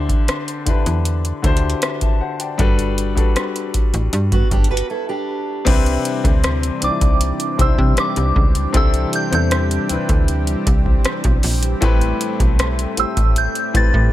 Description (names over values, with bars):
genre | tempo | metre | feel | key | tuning
contemporary R&B | 78 BPM | 4/4 | straight | unclear | A4 = 440 Hz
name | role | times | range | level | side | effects
clear grand piano | accompaniment | 0.0-14.1 s | A2 to A5 | -23 LUFS | left 5 dB | none
slap-like FM bass | bass | 0.0-14.1 s | G1 to C3 | -19 LUFS | equal | none
booming analog drum machine | drums | 0.1-14.1 s | crash cymbal, hi-hat, kick drum, rim click | -17 LUFS | equal | overdrive
fingerpicked steel-string acoustic guitar | arpeggios | 4.3-5.6 s | B3 to B4 | -26 LUFS | right 4 dB | tape echo
lush unison pad | sustained chords | 5.7-14.1 s | E3 to G4 | -26 LUFS | right 1 dB | chorus, sidechain pumping
soft synth bell | melody | 6.8-14.1 s | D6 to A6 | -22 LUFS | right 2 dB | chorus, phaser, tape echo
room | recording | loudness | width
digital ambience | none | -15 LUFS | side -14 dB against mid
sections
0.0-5.7 A section; 5.7-14.1 B section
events
break 4.9-5.7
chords
0.0 D9sus4; 2.6 Gmaj9; 5.7 Cmaj9; 11.8 Am9